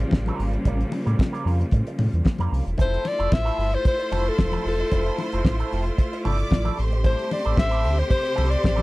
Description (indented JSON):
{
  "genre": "disco",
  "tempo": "113 BPM",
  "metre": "4/4",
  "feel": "straight",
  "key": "unclear",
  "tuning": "A4 = 440 Hz",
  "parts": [
    { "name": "electric guitar with an envelope filter", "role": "accompaniment", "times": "0.0-8.8 s", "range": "G3 to Bb4", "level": "-34 LUFS", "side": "right 5 dB", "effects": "wah" },
    { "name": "clear studio string section", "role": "sustained chords", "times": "0.0-8.8 s", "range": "C3 to G4", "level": "-31 LUFS", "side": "equal", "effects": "none" },
    { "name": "sub bass with octave", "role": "bass", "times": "0.0-8.8 s", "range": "E1 to A2", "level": "-24 LUFS", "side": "equal", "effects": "none" },
    { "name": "damped 70s drum kit", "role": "drums", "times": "0.0-8.8 s", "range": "hi-hat, kick drum, snare drum", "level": "-20 LUFS", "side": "equal", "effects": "none" },
    { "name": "congas", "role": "percussion", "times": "0.1-8.8 s", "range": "none", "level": "-31 LUFS", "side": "left 4 dB", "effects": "none" },
    { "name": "breathy alto saxophone", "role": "melody", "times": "2.8-8.8 s", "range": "A4 to E5", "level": "-25 LUFS", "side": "left 2 dB", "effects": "none" },
    { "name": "clear studio violin section", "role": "second line", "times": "2.8-8.8 s", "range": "C5 to D6", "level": "-32 LUFS", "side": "right 1 dB", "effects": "none" }
  ],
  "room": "little or no reverb",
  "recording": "dry, close 1970s-style studio recording",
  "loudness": "-20 LUFS",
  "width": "side -20 dB against mid",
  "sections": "0.0-2.8 A section; 2.8-8.8 B section",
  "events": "none",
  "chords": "0.0 A7b9b13; 2.8 Fmaj7; 6.8 Am7",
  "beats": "0.12 | 0.65 1.19 1.72 2.25 | 2.79 3.32 3.85 4.38 | 4.92 5.45 5.98 6.51 | 7.04 7.58 8.11 8.64"
}